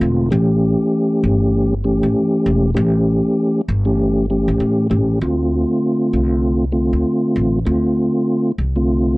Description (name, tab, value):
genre	hip hop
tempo	98 BPM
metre	4/4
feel	swing 60% on 16ths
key	D minor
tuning	A4 = 441 Hz
part	mellow tonewheel organ	accompaniment	0.0-9.2 s	D3 to G4	-16 LUFS	equal	chorus vibrato, stopped rotary speaker, cassette tape, high-pass filter, low-pass filter
part	upright bass	bass	0.0-9.2 s	E1 to A2	-19 LUFS	equal	tube saturation
room	little or no reverb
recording	dry, gritty hardware recording, nothing above 10.3 kHz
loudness	-14 LUFS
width	side -23 dB against mid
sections	0.0-5.2 A section; 5.2-9.2 B section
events	none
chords	0.3 A7; 5.2 Dm7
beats	| 0.32 0.93 1.54 2.15 | 2.77 3.38 3.99 4.60 | 5.21 5.83 6.44 7.05 | 7.66 8.28 8.89